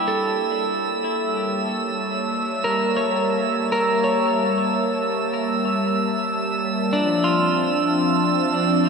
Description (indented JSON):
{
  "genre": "ambient",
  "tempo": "56 BPM",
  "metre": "4/4",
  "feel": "straight",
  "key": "unclear",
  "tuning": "A4 = 440 Hz",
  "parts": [
    { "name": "warm analog pad", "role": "sustained chords", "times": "0.0-8.9 s", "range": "F3 to A5", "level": "-23 LUFS", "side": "equal", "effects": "chorus" },
    { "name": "clean electric guitar", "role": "arpeggios", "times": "0.0-8.9 s", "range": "D4 to C#5", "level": "-23 LUFS", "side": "equal", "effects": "spring reverb, ping-pong delay" },
    { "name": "drifting glass-harmonics texture", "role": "texture", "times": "0.0-8.9 s", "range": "E6", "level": "-26 LUFS", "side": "right 6 dB", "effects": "chorus, built-in reverb" }
  ],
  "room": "wet cathedral reverb, RT60 5.1 s",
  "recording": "cassette tape",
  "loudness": "-19 LUFS",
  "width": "side -5 dB against mid",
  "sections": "0.0-8.9 A section",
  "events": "fade-in on analog synth pad 0.0-8.9",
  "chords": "0.0 A7b9; 6.9 Dm7",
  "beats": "0.50 1.57 | 2.64 3.71 4.78 5.85 | 6.93 8.00"
}